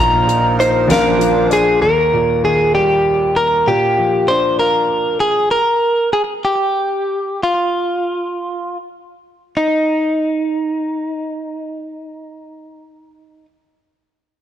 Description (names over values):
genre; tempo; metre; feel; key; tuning
six-eight pop ballad; 52-65 BPM (dotted quarters); 6/8; straight; Eb major; A4 = 440 Hz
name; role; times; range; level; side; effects
direct-recorded clean electric guitar; melody; 0.0-13.5 s; Eb4 to Bb5; -15 LUFS; equal; slapback echo
bright concert grand piano; accompaniment; 0.0-5.5 s; Bb1 to F4; -19 LUFS; equal; none
accordion; sustained chords; 0.0-1.8 s; Bb2 to C5; -22 LUFS; right 4 dB; light tremolo tuning
soft-mallet drum kit; drums; 0.3-1.7 s; hi-hat, snare drum; -20 LUFS; left 1 dB; none
room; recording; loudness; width
light reverb, small room reverb; blown-out, overdriven recording, overdrive; -14 LUFS; side -10 dB against mid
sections
0.0-1.8 A section; 1.8-9.5 B section; 9.5-14.2 C section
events
slowing down 5.5-9.5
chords
0.0 Bbsus4; 0.9 Bbadd9; 1.8 Eb; 3.7 Bb; 5.5 N.C.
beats
0.90 | 1.82 2.75 | 3.67 4.59 | 5.51 6.45 | 7.42 8.44 | 9.55 10.71 | 11.87 13.03